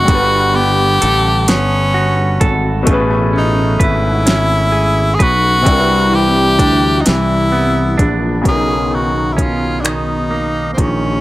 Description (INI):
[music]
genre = slow six-eight R&B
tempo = 43 BPM (dotted quarters)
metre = 6/8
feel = straight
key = unclear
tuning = A4 = 440 Hz
[part]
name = edgy tenor saxophone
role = melody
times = 0.0-11.2 s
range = C4 to G#4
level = -16 LUFS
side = equal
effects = none
[part]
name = semi-hollow electric guitar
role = second line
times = 0.0-11.2 s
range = B2 to B4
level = -20 LUFS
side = right 3 dB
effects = spring reverb
[part]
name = clear grand piano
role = accompaniment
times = 0.0-11.2 s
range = B2 to F#5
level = -21 LUFS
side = left 2 dB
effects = none
[part]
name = sustaining fretless electric bass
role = bass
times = 0.0-11.2 s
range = G1 to D2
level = -16 LUFS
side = equal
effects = tube saturation, ensemble chorus
[part]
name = smooth R&B drum kit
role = drums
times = 0.1-11.0 s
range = finger snaps, hi-hat, kick drum, snare drum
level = -14 LUFS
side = equal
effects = overdrive
[sound]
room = little or no reverb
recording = dry, gritty hardware recording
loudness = -11 LUFS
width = side -16 dB against mid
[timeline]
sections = 0.0-8.5 A section; 8.5-11.2 B section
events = none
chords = 0.1 Gmaj9; 2.9 Amaj9; 5.7 Cmaj9; 8.5 Bmaj9